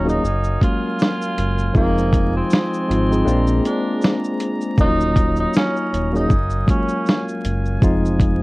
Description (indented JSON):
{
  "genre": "lo-fi hip hop",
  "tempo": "79 BPM",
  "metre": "4/4",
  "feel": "swing 56% on 16ths",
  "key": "unclear",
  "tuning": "A4 = 440 Hz",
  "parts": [
    { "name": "clear tenor saxophone", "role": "melody", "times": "0.0-7.3 s", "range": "Bb3 to F4", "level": "-24 LUFS", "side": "right 1 dB", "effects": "low-pass filter" },
    { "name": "tine electric piano", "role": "accompaniment", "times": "0.0-8.4 s", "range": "F3 to Ab4", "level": "-21 LUFS", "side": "left 1 dB", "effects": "medium stereo tremolo, cassette tape, low-pass filter" },
    { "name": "warm brass ensemble", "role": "sustained chords", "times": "0.0-8.4 s", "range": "Gb3 to Bb5", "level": "-30 LUFS", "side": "equal", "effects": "low-pass filter" },
    { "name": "sub bass with octave", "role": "bass", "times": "0.0-8.4 s", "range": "Eb1 to Bb1", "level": "-21 LUFS", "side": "equal", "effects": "transformer saturation" },
    { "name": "dusty soul sampler-style drum kit", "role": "drums", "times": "0.1-8.4 s", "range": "hi-hat, kick drum, shaker, snare drum", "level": "-18 LUFS", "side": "equal", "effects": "none" }
  ],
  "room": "light reverb",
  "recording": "worn, warbling old tape, cassette tape, vinyl crackle, warbly pitch drift",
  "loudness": "-16 LUFS",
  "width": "side -22 dB against mid",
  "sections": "0.0-8.4 A section",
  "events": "none",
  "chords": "0.2 Gbmaj9; 1.7 Fm7; 3.3 Bb9; 4.8 Ebm7; 6.3 Gbmaj9; 7.8 Fm7"
}